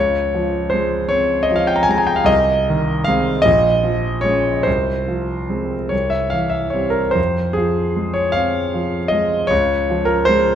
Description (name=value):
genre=classical, romantic nocturne for solo piano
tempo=47-53 BPM (dotted quarters)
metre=12/8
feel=rubato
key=F minor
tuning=A4 = 440 Hz
part: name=warm concert grand piano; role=solo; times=0.0-10.6 s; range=Bb1 to Bb5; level=-15 LUFS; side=equal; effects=none
room=moderate concert hall reverb, RT60 2.1 s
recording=none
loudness=-15 LUFS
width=side -9 dB against mid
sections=0.0-10.6 A section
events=none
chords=0.0 Dbmaj7; 2.3 Ab/C; 3.5 Bbm7; 4.7 Fm/C; 5.9 C; 7.2 Fm; 9.5 Dbmaj7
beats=1.14 | 2.29 3.46 4.66 5.92 | 7.17 8.35 9.51